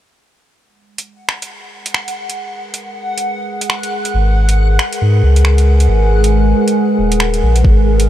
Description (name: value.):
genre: future garage.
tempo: 137 BPM.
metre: 4/4.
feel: swing 60% on 16ths.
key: G# minor.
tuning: A4 = 440 Hz.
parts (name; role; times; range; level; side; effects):
warbly tape-like pad; sustained chords; 0.6-8.1 s; G#3 to G#5; -18 LUFS; equal; chorus, built-in reverb, sidechain pumping.
backwards swelling texture; texture; 2.0-7.7 s; F#5; -24 LUFS; right 1 dB; built-in reverb, wide subtle chorus.
garage drum kit; drums; 1.0-8.1 s; finger snaps, hi-hat; -22 LUFS; right 1 dB; overdrive, small room ambience.
warm sub bass; bass; 4.1-8.1 s; D#1 to G#2; -11 LUFS; equal; sidechain pumping.
electronic kick drum; drums; 7.6-7.8 s; none; -10 LUFS; equal; overdrive, small room ambience.
room: light reverb.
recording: none.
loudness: -11 LUFS.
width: side -12 dB against mid.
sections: 0.6-7.6 A section.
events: fade-in on ambient pad 0.6-7.6.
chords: 0.6 G#m7.